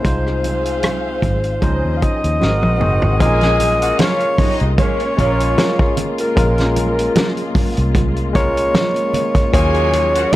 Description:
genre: lush 1970s-style soul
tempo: 76 BPM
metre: 4/4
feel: swing 54% on 16ths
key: Bb minor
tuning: A4 = 440 Hz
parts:
  - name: breathy alto saxophone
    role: melody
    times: 0.0-10.4 s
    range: Bb4 to F5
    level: -19 LUFS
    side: equal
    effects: none
  - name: warm studio string section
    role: second line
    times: 0.0-10.4 s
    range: C4 to Ab5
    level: -26 LUFS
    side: equal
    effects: none
  - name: barky tine electric piano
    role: accompaniment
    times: 0.0-10.4 s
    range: F3 to C5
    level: -22 LUFS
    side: left 2 dB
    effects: slow stereo tremolo
  - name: warm soul drum kit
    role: drums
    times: 0.0-10.4 s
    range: hi-hat, kick drum, rim click, snare drum, toms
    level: -18 LUFS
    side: equal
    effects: none
  - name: congas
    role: percussion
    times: 0.0-10.4 s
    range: none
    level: -26 LUFS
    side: right 6 dB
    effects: none
  - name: vintage muted fingered electric bass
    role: bass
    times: 0.1-10.2 s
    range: Gb1 to Eb2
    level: -19 LUFS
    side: equal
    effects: none
  - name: muted studio string section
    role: sustained chords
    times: 3.2-10.4 s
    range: Bb2 to F4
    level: -28 LUFS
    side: left 1 dB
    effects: none
  - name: warm horn section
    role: stabs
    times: 3.2-10.4 s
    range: C3 to F4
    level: -26 LUFS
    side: right 2 dB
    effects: none
room: small room ambience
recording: none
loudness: -14 LUFS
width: side -15 dB against mid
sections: 0.0-3.2 A section; 3.2-10.4 B section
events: drum fill 2.4-3.2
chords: 0.0 Fm7/C; 1.6 Dbmaj9; 2.4 Ab9; 3.2 Bbm7; 9.5 Ebm11

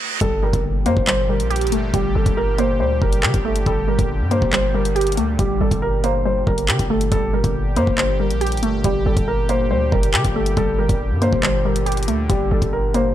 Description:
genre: hip hop, drill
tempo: 139 BPM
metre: 4/4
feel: half-time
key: G minor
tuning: A4 = 440 Hz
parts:
  - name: warbly dusty pluck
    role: accompaniment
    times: 0.0-13.1 s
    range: G3 to G4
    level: -23 LUFS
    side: equal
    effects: chorus, phaser
  - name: reverse cymbal and impact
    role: sound effects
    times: 0.0-1.9 s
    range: none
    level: -29 LUFS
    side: right 2 dB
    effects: none
  - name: dark concert grand piano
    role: melody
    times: 0.2-13.1 s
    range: G4 to C5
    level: -23 LUFS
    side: equal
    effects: ping-pong delay
  - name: sweeping resonant pad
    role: sustained chords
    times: 0.2-13.1 s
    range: Bb2 to G4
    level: -28 LUFS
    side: equal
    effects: chorus
  - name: hard-hitting 808-style bass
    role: bass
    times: 0.2-13.1 s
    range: F#1 to D3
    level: -21 LUFS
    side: equal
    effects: none
  - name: drill drum kit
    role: drums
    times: 0.2-13.0 s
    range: handclaps, hi-hat, kick drum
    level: -22 LUFS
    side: equal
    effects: overdrive
room: digital ambience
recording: dark, warm production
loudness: -16 LUFS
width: side -12 dB against mid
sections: 0.2-13.1 A section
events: reverse cymbal 0.0; stop 0.0; impact 0.2-1.9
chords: 0.2 Gmadd9

